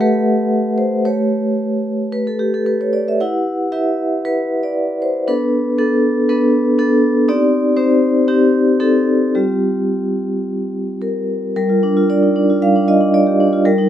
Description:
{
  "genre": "classical, contemporary piece for solo vibraphone",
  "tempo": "107-123 BPM",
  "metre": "4/4",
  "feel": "rubato",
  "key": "G minor from 7.3 s",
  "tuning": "A4 = 436 Hz",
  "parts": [
    { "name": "vibraphone with medium mallets", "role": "solo", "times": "0.0-13.9 s", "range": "G3 to F#5", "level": "-14 LUFS", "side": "equal", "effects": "none" }
  ],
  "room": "moderate studio ambience, RT60 0.5 s",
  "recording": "dark, warm production",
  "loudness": "-14 LUFS",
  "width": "side -10 dB against mid",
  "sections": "0.0-11.6 A section; 11.6-13.9 B section",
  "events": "none",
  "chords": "0.0 Asus2; 1.0 A9; 3.2 Emadd9; 5.3 Bm7; 7.3 Cm6; 9.3 Gm7",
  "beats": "0.00 0.51 | 1.05 1.59 2.13 2.67 | 3.20 3.73 4.24 4.76 | 5.28 5.79 6.29 6.79 | 7.28 7.77 8.27 8.80 | 9.35 9.91 10.46 11.01 | 11.56 12.10 12.62 13.13 | 13.64"
}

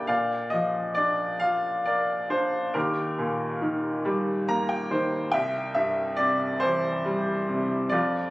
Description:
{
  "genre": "classical, lyrical solo piano",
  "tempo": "46 BPM (dotted quarters)",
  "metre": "6/8",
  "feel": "rubato",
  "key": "Bb major",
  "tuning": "A4 = 442 Hz",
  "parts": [
    { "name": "bright upright piano", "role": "solo", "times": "0.0-8.3 s", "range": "C2 to Bb5", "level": "-24 LUFS", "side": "equal", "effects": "none" }
  ],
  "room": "light reverb",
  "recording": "recorded on a phone in the room, studio reverb",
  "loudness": "-24 LUFS",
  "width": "side -19 dB against mid",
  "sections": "0.1-8.3 A section",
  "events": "upright piano fill 4.1-5.3",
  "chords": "0.1 Bb; 2.8 Eb; 5.3 C",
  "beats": "| 0.09 1.43 | 2.75 4.05 | 5.34 6.63 | 7.92"
}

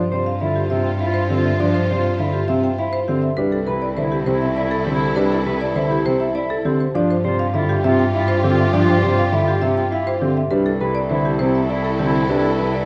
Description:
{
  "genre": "classical, minimalist pattern music",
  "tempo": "101 BPM",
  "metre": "3/4",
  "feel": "straight",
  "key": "G mixolydian",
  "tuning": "A4 = 440 Hz",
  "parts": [
    { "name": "marimba with medium hard mallets", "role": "melody", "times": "0.0-12.9 s", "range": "G4 to G5", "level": "-26 LUFS", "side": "equal", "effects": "none" },
    { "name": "clear clarinet", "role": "second line", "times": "0.0-12.9 s", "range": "E4 to F4", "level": "-29 LUFS", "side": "equal", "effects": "none" },
    { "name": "warm symphonic string section", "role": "sustained chords", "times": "0.0-12.9 s", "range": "E4 to C5", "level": "-31 LUFS", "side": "equal", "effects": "none" },
    { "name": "rich cello", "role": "bass", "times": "0.0-12.9 s", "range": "C2 to G2", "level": "-26 LUFS", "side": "equal", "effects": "none" },
    { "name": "dark grand piano", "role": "accompaniment", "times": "0.1-12.8 s", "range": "C3 to G3", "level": "-25 LUFS", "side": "equal", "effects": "none" },
    { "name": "mellow electric guitar", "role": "arpeggios", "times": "0.1-12.8 s", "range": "C4 to C5", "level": "-26 LUFS", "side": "equal", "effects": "none" }
  ],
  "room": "moderate scoring stage reverb, RT60 1.6 s",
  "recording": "dark, warm production, nothing above 10.8 kHz",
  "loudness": "-19 LUFS",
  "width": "mono",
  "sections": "0.0-12.9 A section",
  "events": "none",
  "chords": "0.0 G7sus4; 3.4 C69; 6.9 G7sus4; 10.5 C69",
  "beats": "0.41 1.01 | 1.60 2.19 2.79 | 3.38 3.98 4.57 | 5.17 5.76 6.35 | 6.95 7.54 8.14 | 8.73 9.32 9.92 | 10.51 11.11 11.70 | 12.29"
}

